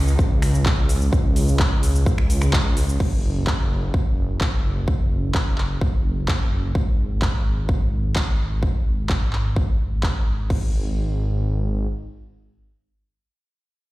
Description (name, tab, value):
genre	EDM, festival progressive house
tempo	128 BPM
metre	4/4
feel	straight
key	unclear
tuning	A4 = 440 Hz
part	detuned saw bass	bass	0.0-11.9 s	F#1 to C#2	-22 LUFS	equal	tube saturation, sidechain pumping
part	big-room dance drum kit	drums	0.1-10.6 s	crash cymbal, finger snaps, handclaps, hi-hat, shaker	-29 LUFS	equal	overdrive
part	electronic kick drum	drums	0.2-10.6 s	none	-20 LUFS	equal	overdrive
room	little or no reverb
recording	played on a big sound system in a bare room, large studio reverb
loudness	-19 LUFS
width	side -18 dB against mid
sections	0.0-3.0 A section; 3.0-10.5 B section; 10.5-13.9 C section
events	drop 0.0-3.0; filter sweep on detuned saw bass 3.0-10.5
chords	none